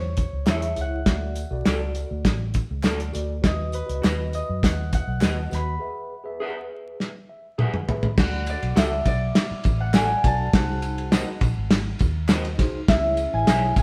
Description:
uptempo 1960s-style soul; 102 BPM; 4/4; straight; A4 = 441 Hz
Celtic harp; melody; 0.0-13.8 s; B4 to B5; -30 LUFS; equal
vintage muted fingered electric bass; bass; 0.0-13.8 s; G#1 to F#2; -29 LUFS; equal
cloth-damped thuddy drum kit; drums; 0.2-13.8 s; crash cymbal, hi-hat, kick drum, ride cymbal, snare drum, toms; -24 LUFS; equal
tambourine and handclaps; percussion; 0.2-13.8 s; -43 LUFS; equal
electric guitar through a small old amp; stabs; 0.5-13.6 s; E4 to E5; -34 LUFS; equal
mellow tine electric piano; accompaniment; 0.8-13.8 s; C#4 to B5; -37 LUFS; equal
moderate stone room reverb, RT60 1.0 s; band playing live in one room, vinyl crackle; -23 LUFS; mono
0.0-8.2 A section; 8.2-13.8 B section
break 5.8-8.2; tine electric piano fill 7.0-8.2; drum fill 7.0-8.2
0.0 C#m; 1.1 D; 3.4 B; 5.8 E; 8.2 D; 10.5 G#7; 12.9 C#m
0.47 | 1.07 1.66 2.26 2.85 | 3.44 4.04 4.63 5.22 | 5.81 6.40 7.00 7.59 | 8.18 8.77 9.36 9.94 | 10.53 11.12 11.71 12.30 | 12.89 13.47

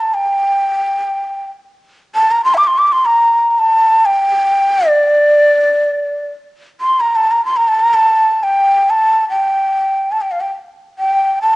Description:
Turkish makam ensemble; free time; A4 = 440 Hz
breathy ney; solo; 0.0-11.6 s; D5 to D6; -11 LUFS; equal; cassette tape
moderate spring reverb, RT60 1.3 s, studio ambience; home recording on cassette, nothing above 10.4 kHz; -11 LUFS; side -21 dB against mid
0.0-6.5 A section; 6.5-11.6 A section
free time

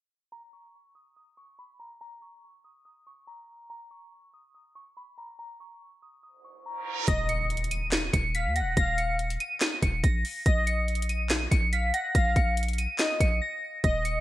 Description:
hip hop, trap; 142 BPM; 4/4; half-time; A4 = 440 Hz
soft synth bell; melody; 0.3-14.2 s; Bb5 to Eb7; -32 LUFS; right 1 dB; chorus, digital delay
reverse cymbal and impact; sound effects; 6.8-8.8 s; -38 LUFS; right 3 dB
warm velvety synth lead; second line; 7.1-14.2 s; Eb5 to Gb5; -32 LUFS; left 2 dB; chorus, digital delay
warm 808-style bass; bass; 7.1-14.2 s; Eb1 to Eb2; -28 LUFS; equal
trap drum kit; drums; 7.1-14.2 s; handclaps, hi-hat, kick drum, snare drum; -27 LUFS; equal; vintage 12-bit sampler grit, gated reverb
light reverb, digital ambience; bright 1980s-style digital production, low-pass filter; -24 LUFS; side -15 dB against mid
0.3-7.1 A section; 7.1-14.2 B section
filter sweep 0.3-7.1; reverse cymbal 6.8-7.1; impact 7.1-8.8; break 13.4-13.8
0.3 N.C.; 7.1 Eb5; 10.5 Bbsus4
| 0.32 0.74 1.16 1.59 | 2.01 2.43 2.85 3.28 | 3.70 4.12 4.54 4.97 | 5.39 5.81 6.23 6.66 | 7.08 7.50 7.92 8.35 | 8.77 9.19 9.61 10.04 | 10.46 10.88 11.30 11.73 | 12.15 12.57 12.99 13.42 | 13.84

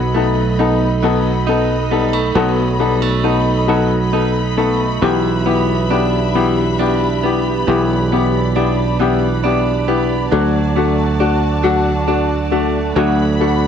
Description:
six-eight pop ballad; 45 BPM (dotted quarters); 6/8; straight; A4 = 441 Hz
warm studio string section; sustained chords; 0.0-13.7 s; F#4 to B5; -23 LUFS; left 2 dB
direct-recorded clean electric guitar; arpeggios; 0.0-13.7 s; E3 to F#4; -20 LUFS; right 11 dB
fingered electric bass; bass; 0.0-13.7 s; B1 to D2; -18 LUFS; right 1 dB
warm upright piano; accompaniment; 0.2-13.7 s; A3 to A4; -18 LUFS; left 8 dB
moderate spring reverb, RT60 1.4 s, studio ambience; home recording on cassette; -13 LUFS; side -8 dB against mid
0.0-13.7 A section
0.0 B7; 5.0 G6/B; 10.3 D
1.03 | 2.36 3.69 | 5.03 6.36 | 7.68 9.01 | 10.32 11.64 | 12.96

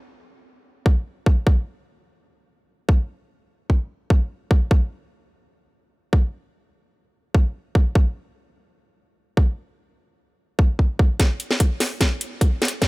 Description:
future bass; 148 BPM; 4/4; half-time
electronic kick drum; drums; 0.9-12.9 s; -16 LUFS; equal; small room ambience
trap drum kit; drums; 11.2-12.9 s; hi-hat, snare drum; -22 LUFS; equal; low-pass filter on hats, small room ambience, low-pass filter on snare, low-pass filter on cymbals
little or no reverb; -19 LUFS; side -25 dB against mid
0.0-11.2 A section; 11.2-12.9 B section
filter sweep on drum 0.0-11.2; build-up 11.2-12.9; drum fill 11.2-12.9
0.25 0.66 1.06 | 1.47 1.87 2.28 2.68 | 3.09 3.49 3.90 4.30 | 4.71 5.12 5.52 5.93 | 6.33 6.74 7.14 7.55 | 7.95 8.36 8.76 9.17 | 9.57 9.98 10.39 10.79 | 11.20 11.60 12.01 12.41 | 12.82

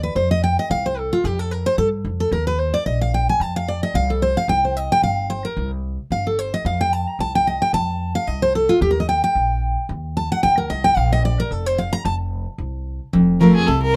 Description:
bluegrass; 222 BPM; 4/4; swing 55% on 8ths; F mixolydian; A4 = 443 Hz
picked steel-string acoustic guitar; accompaniment; 0.0-14.0 s; F2 to Bb5; -21 LUFS; equal
upright bass; bass; 0.0-14.0 s; F1 to G2; -26 LUFS; equal
rich fiddle; melody; 13.4-14.0 s; Ab4 to Bb4; -21 LUFS; equal
light reverb; rough home demo mix; -20 LUFS; mono
0.0-4.5 A section; 4.5-13.1 A section
steel-string acoustic guitar solo 0.0-13.1
0.2 F5; 2.3 Eb5; 3.4 F5; 4.5 Csus4; 6.7 F; 8.8 Eb; 11.0 Bb5; 12.1 F5
| 0.17 0.44 0.71 0.98 | 1.25 1.52 1.79 2.06 | 2.33 2.60 2.87 3.14 | 3.41 3.68 3.95 4.22 | 4.49 4.76 5.03 5.30 | 5.57 5.84 6.11 6.38 | 6.65 6.92 7.19 7.46 | 7.73 8.00 8.27 8.54 | 8.81 9.08 9.35 9.62 | 9.89 10.16 10.43 10.70 | 10.97 11.24 11.51 11.78 | 12.05 12.32 12.59 12.86 | 13.13 13.40 13.68 13.95

